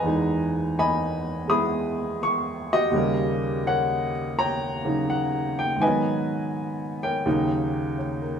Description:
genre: solo jazz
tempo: 83 BPM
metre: 4/4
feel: swing 68% on 8ths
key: unclear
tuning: A4 = 439 Hz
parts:
  - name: warm upright piano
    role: solo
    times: 0.0-8.4 s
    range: D#2 to D#6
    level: -22 LUFS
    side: equal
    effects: none
room: moderate stone room reverb, RT60 1.1 s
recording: band playing live in one room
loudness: -22 LUFS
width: side -7 dB against mid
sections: 0.0-8.4 A section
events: none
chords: 0.0 Emaj7; 2.9 D#7#9; 5.8 G#m7; 7.3 D#7#9

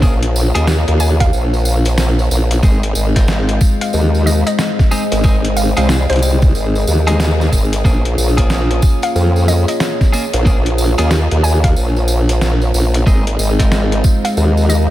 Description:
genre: glitch hop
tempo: 92 BPM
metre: 4/4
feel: swing 63% on 16ths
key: Bb minor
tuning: A4 = 440 Hz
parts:
  - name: dark analog pad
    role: sustained chords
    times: 0.0-14.9 s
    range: Ab3 to Eb5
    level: -22 LUFS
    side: left 2 dB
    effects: lush chorus, sidechain pumping
  - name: clean electric guitar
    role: stabs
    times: 0.0-14.9 s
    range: Ab3 to Ab4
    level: -23 LUFS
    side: left 1 dB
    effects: spring reverb, sidechain pumping, diffuse ambient delay
  - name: formant-sweep wobble bass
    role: bass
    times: 0.0-14.9 s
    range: Ab1 to F2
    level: -14 LUFS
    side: equal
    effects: chorus
  - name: electronic kick drum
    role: drums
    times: 0.0-14.2 s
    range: none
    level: -12 LUFS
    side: equal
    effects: studio reverb
  - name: tambourine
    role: percussion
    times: 0.0-14.9 s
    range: none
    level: -27 LUFS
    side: right 2 dB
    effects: none
  - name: boom bap sampler-style drum kit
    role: drums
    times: 0.2-14.3 s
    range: hi-hat, rim click, snare drum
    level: -22 LUFS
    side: equal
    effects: studio reverb
  - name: woody wave-folded pluck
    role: melody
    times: 1.0-14.8 s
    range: C5 to Ab5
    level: -25 LUFS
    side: right 1 dB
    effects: chorus, diffuse ambient delay
room: light reverb, digital ambience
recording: none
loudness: -12 LUFS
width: side -14 dB against mid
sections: 0.0-14.9 A section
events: none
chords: 0.0 Bbm7; 2.6 Ab; 7.8 Bbm7; 13.1 Ab

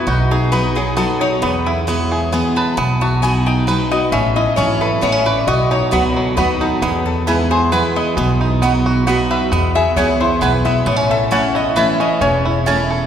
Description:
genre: bluegrass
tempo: 134 BPM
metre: 3/4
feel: straight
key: B mixolydian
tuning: A4 = 445 Hz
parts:
  - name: lap resonator guitar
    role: second line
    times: 0.0-12.7 s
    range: D#4 to B5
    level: -20 LUFS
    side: left 4 dB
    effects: none
  - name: picked steel-string acoustic guitar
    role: accompaniment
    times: 0.0-13.1 s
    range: E2 to F#4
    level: -20 LUFS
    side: equal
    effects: none
  - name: bluegrass banjo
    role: arpeggios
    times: 0.0-13.1 s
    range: F#3 to B4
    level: -20 LUFS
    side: right 2 dB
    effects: none
  - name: upright bass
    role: bass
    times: 0.1-13.1 s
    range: E1 to E2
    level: -20 LUFS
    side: equal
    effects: none
  - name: mandolin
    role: stabs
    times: 5.9-12.8 s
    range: A3 to B5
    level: -23 LUFS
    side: right 5 dB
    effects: none
room: wet cathedral reverb, RT60 4.8 s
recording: recorded in a church or concert hall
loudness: -14 LUFS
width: side -9 dB against mid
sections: 0.0-13.1 A section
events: resonator guitar played with a steel bar solo 0.0-13.1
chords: 0.0 B; 1.4 E; 2.8 B; 4.1 A; 5.5 B; 6.8 E; 8.2 B; 9.5 E; 10.9 A

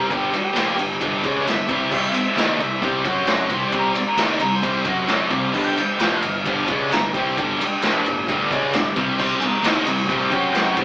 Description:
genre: garage rock duo or trio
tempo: 132 BPM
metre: 4/4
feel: straight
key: unclear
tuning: A4 = 441 Hz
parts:
  - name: octave-fuzz lead guitar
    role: melody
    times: 0.0-10.7 s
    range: G4 to G5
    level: -25 LUFS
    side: equal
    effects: distortion
  - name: combo organ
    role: sustained chords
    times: 0.0-10.8 s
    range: C4 to D5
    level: -33 LUFS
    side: equal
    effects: none
  - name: thick fuzz guitar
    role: riff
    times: 0.0-10.8 s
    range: G2 to F#4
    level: -21 LUFS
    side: equal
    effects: distortion
  - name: growling picked electric bass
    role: bass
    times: 0.0-10.8 s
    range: G1 to F#2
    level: -30 LUFS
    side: equal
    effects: overdrive
  - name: raw garage drum kit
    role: drums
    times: 0.1-10.8 s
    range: crash cymbal, kick drum, ride cymbal, snare drum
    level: -22 LUFS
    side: equal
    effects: none
  - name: group handclap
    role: percussion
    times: 0.6-10.6 s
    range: none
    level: barely audible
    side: none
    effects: none
room: moderate studio ambience, RT60 0.5 s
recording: band playing live in one room, AM radio sound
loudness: -17 LUFS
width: side -20 dB against mid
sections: 0.0-10.8 A section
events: lead electric guitar solo 0.0-10.8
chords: 0.0 G; 1.9 C5; 5.5 G; 9.2 C5

